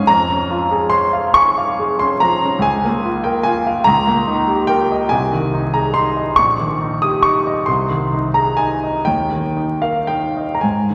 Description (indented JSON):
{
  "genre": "classical, romantic nocturne for solo piano",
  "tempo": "36-49 BPM (dotted quarters)",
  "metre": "6/8",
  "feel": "rubato",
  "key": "unclear",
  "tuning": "A4 = 439 Hz",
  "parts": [
    { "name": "clear grand piano", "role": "solo", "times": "0.0-10.9 s", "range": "Bb1 to Eb6", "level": "-17 LUFS", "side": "equal", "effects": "none" }
  ],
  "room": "wet scoring stage reverb, RT60 2.0 s",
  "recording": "vinyl crackle",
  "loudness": "-17 LUFS",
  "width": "mono",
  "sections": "0.0-10.9 A section",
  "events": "none",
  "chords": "0.1 Db/F; 2.6 Bbm/Db; 3.9 Eb7/Db; 5.1 Ab/C; 6.4 Eb7/Bb; 7.7 Ab/C; 9.1 Eb"
}